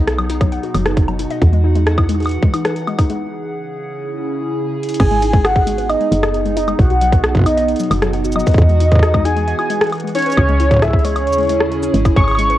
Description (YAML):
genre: IDM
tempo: 134 BPM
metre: 4/4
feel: straight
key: unclear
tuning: A4 = 440 Hz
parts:
  - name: warbly tape-like pad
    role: sustained chords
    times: 0.0-12.6 s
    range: B2 to F#5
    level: -22 LUFS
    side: right 3 dB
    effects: chorus, built-in reverb, phaser, cassette tape
  - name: warbly dusty pluck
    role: arpeggios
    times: 0.0-12.6 s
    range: F#3 to G#5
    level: -24 LUFS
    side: left 8 dB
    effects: chorus, cassette tape, analog delay
  - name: woody FM bass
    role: bass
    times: 0.0-12.6 s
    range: F#1 to E2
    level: -17 LUFS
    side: equal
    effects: none
  - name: electro analog drum machine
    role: drums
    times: 0.1-12.6 s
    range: crash cymbal, hi-hat, rim click, shaker, woodblock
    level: -21 LUFS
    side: left 1 dB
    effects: cassette tape
  - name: electronic kick drum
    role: drums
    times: 0.4-12.3 s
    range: none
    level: -14 LUFS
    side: equal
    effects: cassette tape
  - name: warm velvety synth lead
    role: melody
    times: 5.0-12.6 s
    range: C#5 to C#6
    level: -18 LUFS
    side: equal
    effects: chorus, tremolo, cassette tape, tape echo
room: light reverb, digital ambience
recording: home recording on cassette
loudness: -13 LUFS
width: side -14 dB against mid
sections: 0.0-5.0 A section; 5.0-12.6 B section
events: break 3.2-5.0; drum fill 4.8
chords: 0.0 B; 1.4 Emaj7; 3.2 C#m; 5.0 G#m; 6.8 B; 8.6 Emaj7; 10.4 C#m